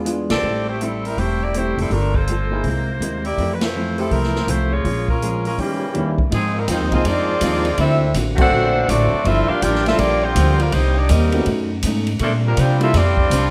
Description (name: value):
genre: jazz, big band swing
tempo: 163 BPM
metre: 4/4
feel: swing 64% on 8ths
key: unclear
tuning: A4 = 440 Hz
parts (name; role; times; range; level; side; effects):
- warm baby grand piano; accompaniment; 0.0-12.9 s; Eb2 to A4; -28 LUFS; equal; none
- upright bass; bass; 0.0-13.5 s; E1 to C3; -23 LUFS; equal; none
- vintage hollow-body jazz guitar; accompaniment; 0.1-13.5 s; F2 to A4; -28 LUFS; equal; none
- swinging big-band drum kit; drums; 0.1-13.4 s; crash cymbal, hi-hat, kick drum, ride cymbal, snare drum; -28 LUFS; equal; none
- bright saxophone section; melody; 0.3-13.5 s; Fb3 to G5; -24 LUFS; equal; none
- clear trombone section; second line; 5.6-13.5 s; Bb2 to G4; -27 LUFS; equal; none
room: moderate recital hall reverb, RT60 1.4 s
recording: none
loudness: -19 LUFS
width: mono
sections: 0.0-6.3 A section; 6.3-13.5 B section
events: band accent 0.3, 3.6, 8.3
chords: 0.4 Am7; 1.9 Gm9; 2.6 C7alt; 3.4 Fmaj7; 4.8 Bbm7; 5.6 Eb7b9; 6.3 Ab6; 7.8 D7b13; 9.3 Gm7; 10.7 Cm7; 11.5 B9; 12.2 Bb69